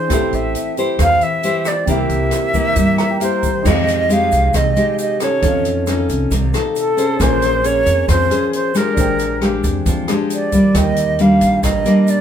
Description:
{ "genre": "bossa nova", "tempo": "135 BPM", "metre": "4/4", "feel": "straight", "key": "F minor from 3.7 s", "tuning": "A4 = 439 Hz", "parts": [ { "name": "bright silver concert flute", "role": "melody", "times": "0.0-12.2 s", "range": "A4 to F5", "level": "-18 LUFS", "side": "right 2 dB", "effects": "none" }, { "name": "nylon-string guitar", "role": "accompaniment", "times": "0.0-12.2 s", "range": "Bb2 to C5", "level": "-18 LUFS", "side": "left 2 dB", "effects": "none" }, { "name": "warm concert grand piano", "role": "accompaniment", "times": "0.0-12.2 s", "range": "C4 to D6", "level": "-27 LUFS", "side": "right 5 dB", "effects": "none" }, { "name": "upright bass", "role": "bass", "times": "0.1-11.8 s", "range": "A1 to G2", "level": "-20 LUFS", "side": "right 1 dB", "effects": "none" }, { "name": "open jazz drum kit", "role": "drums", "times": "0.1-12.2 s", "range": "crash cymbal, hi-hat, kick drum, rim click", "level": "-22 LUFS", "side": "left 1 dB", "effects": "none" }, { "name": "egg shaker", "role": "percussion", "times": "0.1-12.2 s", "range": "none", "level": "-34 LUFS", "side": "right 7 dB", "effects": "none" } ], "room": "moderate studio reverb, RT60 0.6 s", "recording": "band playing live in one room", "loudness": "-13 LUFS", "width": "side -9 dB against mid", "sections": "0.0-3.7 A section; 3.7-12.2 B section", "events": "grand piano fill 2.8-3.7", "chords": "0.1 Am7; 1.9 C7; 3.7 Fm9; 5.4 F7b13; 7.2 Bbm9; 9.0 Bb13; 10.7 Ebmaj7" }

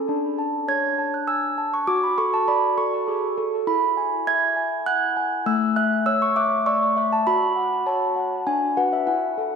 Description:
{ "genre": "classical, lullaby for handbells", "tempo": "100 BPM", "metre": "3/4", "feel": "straight", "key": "unclear", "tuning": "A4 = 439 Hz", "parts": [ { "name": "handbells", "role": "solo", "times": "0.0-9.6 s", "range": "A3 to G#6", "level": "-20 LUFS", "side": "equal", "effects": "tape echo" } ], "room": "wet plate reverb, RT60 2.3 s", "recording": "dreamy mix soaked in reverb", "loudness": "-20 LUFS", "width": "side -6 dB against mid", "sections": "0.0-9.6 A section", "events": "none", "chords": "0.1 D5; 1.9 D/F#; 3.7 E; 5.5 A; 7.3 F#m; 8.5 Bm/D" }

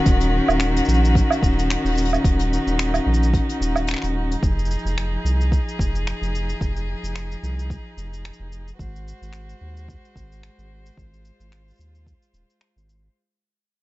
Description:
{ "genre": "folktronica", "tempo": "110 BPM", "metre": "4/4", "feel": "swing 56% on 16ths", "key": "unclear", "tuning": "A4 = 441 Hz", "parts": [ { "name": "warm string quartet", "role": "sustained chords", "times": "0.0-13.1 s", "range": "Eb3 to C5", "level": "-24 LUFS", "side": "left 1 dB", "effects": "none" }, { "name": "round analog bass", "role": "bass", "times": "0.1-13.1 s", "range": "Eb1 to Eb2", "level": "-23 LUFS", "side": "equal", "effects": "none" }, { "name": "electronic kick drum", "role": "drums", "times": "0.1-12.2 s", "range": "none", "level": "-21 LUFS", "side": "equal", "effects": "none" }, { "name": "jazz brush drum kit", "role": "drums", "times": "0.1-13.0 s", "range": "cabasa, finger snaps, hi-hat, woodblock", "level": "-26 LUFS", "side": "right 3 dB", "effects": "none" } ], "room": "little or no reverb", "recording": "nothing above 7.8 kHz", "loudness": "-19 LUFS", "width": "side -18 dB against mid", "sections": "0.0-13.2 A section", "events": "fade-out 0.0-13.2", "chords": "0.0 Ebm7; 4.4 Fm7; 8.8 Ab7" }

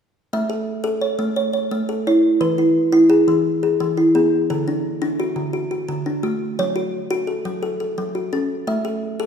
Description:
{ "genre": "southern african traditional", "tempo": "115 BPM (dotted quarters)", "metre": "12/8", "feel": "straight", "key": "A major", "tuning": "A4 = 440 Hz", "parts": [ { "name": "kalimba", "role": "arpeggios", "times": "0.3-9.3 s", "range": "D3 to E5", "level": "-18 LUFS", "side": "equal", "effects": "none" } ], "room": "moderate recital hall reverb, RT60 1.6 s", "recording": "recorded in a church or concert hall", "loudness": "-18 LUFS", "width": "side -7 dB against mid", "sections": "0.3-9.3 A section", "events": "none", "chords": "0.3 A; 2.4 E; 4.5 D; 6.6 F#m; 8.7 A5" }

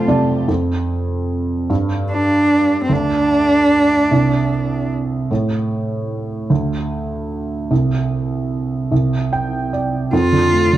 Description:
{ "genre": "acoustic folk-pop ballad", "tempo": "50 BPM (dotted quarters)", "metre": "6/8", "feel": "straight", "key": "F major", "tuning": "A4 = 440 Hz", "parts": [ { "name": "clear cello", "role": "melody", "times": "0.0-4.9, 10.1-10.8 s", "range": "C4 to F4", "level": "-15 LUFS", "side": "right 1 dB", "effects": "none" }, { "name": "felt-muted upright piano", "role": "accompaniment", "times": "0.0-10.8 s", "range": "C2 to A5", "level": "-18 LUFS", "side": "right 2 dB", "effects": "none" }, { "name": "warm chamber string section", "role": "sustained chords", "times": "0.0-0.5 s", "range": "C3 to G4", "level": "-34 LUFS", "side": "left 4 dB", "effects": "none" } ], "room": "moderate large studio reverb, RT60 1.2 s", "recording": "dark, warm production", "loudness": "-15 LUFS", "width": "side -13 dB against mid", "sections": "0.5-10.1 A section", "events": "none", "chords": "0.5 N.C.; 10.1 F6" }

